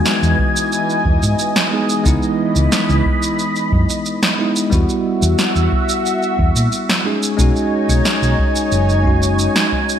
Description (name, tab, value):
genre	sunset chillout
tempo	90 BPM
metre	4/4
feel	straight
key	unclear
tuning	A4 = 440 Hz
part	bell-like tine electric piano	accompaniment	0.0-10.0 s	G3 to G#4	-20 LUFS	equal	auto-pan, digital delay
part	lush unison pad	sustained chords	0.0-10.0 s	E3 to B5	-20 LUFS	equal	chorus, phaser
part	electronic snare drum and shaker	drums	0.1-10.0 s	none	-20 LUFS	right 1 dB	gated reverb
part	hollow-body short-scale fingered electric bass	bass	0.2-9.5 s	F#1 to A#2	-16 LUFS	equal	none
part	electronic kick drum	drums	0.4-9.9 s	none	-19 LUFS	equal	none
room	moderate plate reverb, RT60 2.7 s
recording	bright 1980s-style digital production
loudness	-14 LUFS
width	side -9 dB against mid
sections	0.0-10.0 A section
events	none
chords	0.0 Emaj7; 2.1 C#m9; 4.7 Emadd9; 7.1 B69 (rootless)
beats	0.06 0.72 1.39 | 2.06 2.72 3.39 4.06 | 4.72 5.39 6.06 6.72 | 7.39 8.06 8.72 9.39